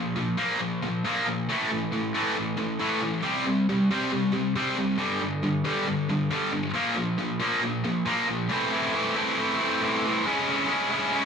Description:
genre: rock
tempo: 137 BPM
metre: 4/4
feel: straight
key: unclear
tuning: A4 = 440 Hz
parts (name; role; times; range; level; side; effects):
- high-gain distorted guitar; solo; 0.0-11.2 s; G2 to E4; -24 LUFS; equal; distortion
room: little or no reverb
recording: small room ambience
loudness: -24 LUFS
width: side -6 dB against mid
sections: 0.0-8.5 A section; 8.5-11.2 B section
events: none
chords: 0.0 Bb5; 1.5 A5; 3.2 C5; 5.0 G5; 6.8 Bb5; 8.5 Am; 10.3 C#m

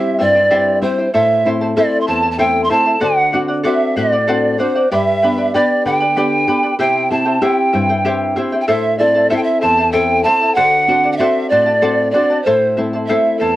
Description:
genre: andean folk, Andean ensemble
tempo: 64 BPM (dotted quarters)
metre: 6/8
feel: straight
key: unclear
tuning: A4 = 442 Hz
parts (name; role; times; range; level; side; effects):
- polished pan flute; melody; 0.0-13.6 s; C5 to C6; -15 LUFS; equal; none
- breathy pan flute; second line; 0.0-13.6 s; A4 to C6; -20 LUFS; right 3 dB; none
- charango; accompaniment; 0.0-13.6 s; E4 to B5; -20 LUFS; left 1 dB; none
- nylon-string guitar; accompaniment; 0.0-13.6 s; E2 to A4; -19 LUFS; left 1 dB; none
room: moderate small room reverb, RT60 0.5 s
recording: worn, warbling old tape, cassette tape, warbly pitch drift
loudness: -12 LUFS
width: side -15 dB against mid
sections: 0.0-13.6 A section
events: none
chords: 0.0 C; 1.1 Am; 3.0 D7; 4.9 G; 6.8 C; 8.7 Am; 10.6 D7; 12.5 Am

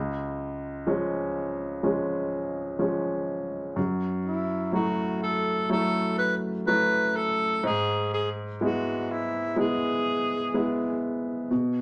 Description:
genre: pop ballad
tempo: 62 BPM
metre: 4/4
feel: straight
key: unclear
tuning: A4 = 440 Hz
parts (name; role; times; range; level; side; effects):
- warm grand piano; accompaniment; 0.0-11.8 s; C#2 to E4; -29 LUFS; equal; none
- breathy alto saxophone; melody; 4.3-11.0 s; E4 to B4; -29 LUFS; equal; none
room: wet studio reverb, RT60 0.5 s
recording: none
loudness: -27 LUFS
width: mono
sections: 0.0-11.8 A section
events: none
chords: 0.0 C#; 3.8 F#m7; 7.6 E/G#

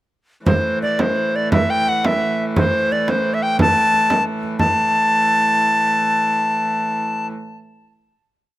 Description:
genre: medieval dance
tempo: 113-129 BPM (dotted quarters)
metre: 6/8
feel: straight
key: A minor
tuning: A4 = 440 Hz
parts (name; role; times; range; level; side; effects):
- bright reedy tenor recorder; melody; 0.5-7.3 s; C5 to A5; -17 LUFS; left 1 dB; slapback echo
- rich hurdy-gurdy; drone; 0.5-7.3 s; A2 to E3; -24 LUFS; right 2 dB; none
- frame drum; percussion; 0.5-4.7 s; none; -20 LUFS; right 2 dB; none
room: light reverb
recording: recorded outdoors, with no room sound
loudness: -15 LUFS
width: side -15 dB against mid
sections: 0.5-4.6 A section; 4.6-6.5 final chord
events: speeding up 0.5-6.5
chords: none

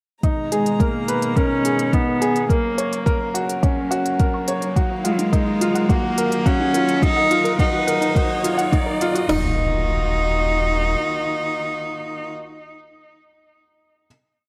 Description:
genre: piano and strings electronica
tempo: 106 BPM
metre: 4/4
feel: straight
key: Eb minor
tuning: A4 = 440 Hz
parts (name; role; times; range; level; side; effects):
- dark string quartet; sustained chords; 0.2-12.3 s; Cb3 to Bb5; -31 LUFS; equal; none
- warbly dusty pluck; arpeggios; 0.2-9.6 s; Db4 to Db6; -31 LUFS; equal; none
- bright upright piano; riff; 0.2-14.1 s; Db4 to Db5; -26 LUFS; equal; delay
- warm sub bass; bass; 0.2-10.9 s; Eb1 to Ab1; -31 LUFS; equal; sidechain pumping, high-pass filter
- electronic hi-hat; drums; 0.2-9.3 s; none; -32 LUFS; equal; none
- organic electronic drum kit; drums; 0.2-9.4 s; crash cymbal, kick drum, snare drum; -22 LUFS; equal; none
- riser and impact; sound effects; 3.6-12.4 s; none; -35 LUFS; equal; none
- clear cello; melody; 0.5-12.3 s; Gb3 to Eb4; -24 LUFS; equal; low-pass filter, delay
room: moderate recital hall reverb, RT60 1.6 s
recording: none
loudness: -20 LUFS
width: mono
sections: 0.2-9.3 build; 9.3-11.6 final chord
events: build-up 0.2-9.3; filter sweep on cello 0.2-9.3; riser 3.6-9.3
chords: 0.2 Abmadd9; 2.5 Gb; 4.8 Ebmadd9

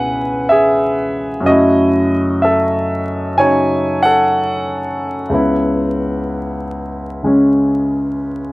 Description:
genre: solo jazz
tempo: 62 BPM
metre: 4/4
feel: swing 66% on 8ths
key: C# minor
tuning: A4 = 440 Hz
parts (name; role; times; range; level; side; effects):
- warm grand piano; solo; 0.0-8.5 s; C#2 to G#5; -13 LUFS; equal; none
room: wet booth ambience, RT60 0.3 s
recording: home recording on cassette, vinyl crackle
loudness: -13 LUFS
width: side -21 dB against mid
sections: 0.0-8.5 A section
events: none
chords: 0.0 C#m7; 1.4 F#m7; 5.3 C#m7

